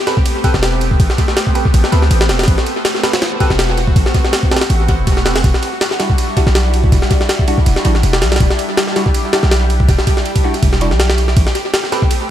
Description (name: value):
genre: drum and bass, jungle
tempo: 162 BPM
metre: 4/4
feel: swing 54% on 16ths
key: E minor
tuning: A4 = 440 Hz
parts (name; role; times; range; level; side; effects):
- lush unison pad; sustained chords; 0.0-12.3 s; G3 to G4; -21 LUFS; equal; chorus, phaser
- bell-like tine electric piano; stabs; 0.1-12.0 s; G3 to B4; -23 LUFS; right 2 dB; phaser, dub echo
- jungle sampler-style drum kit; drums; 0.1-12.2 s; kick drum, ride cymbal, snare drum; -14 LUFS; equal; tape echo
- warm 808-style bass; bass; 0.5-11.5 s; E1 to D2; -14 LUFS; equal; none
room: light reverb, digital ambience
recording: echo-heavy mix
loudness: -11 LUFS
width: side -11 dB against mid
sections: 0.0-12.3 A section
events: none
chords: 0.0 Am9; 5.4 Em9; 11.4 Am9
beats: 0.26 0.63 | 1.00 1.37 1.74 2.11 | 2.48 2.85 3.22 3.59 | 3.96 4.33 4.70 5.07 | 5.44 5.81 6.18 6.55 | 6.92 7.29 7.66 8.03 | 8.40 8.78 9.14 9.52 | 9.89 10.26 10.63 11.00 | 11.37 11.74 12.11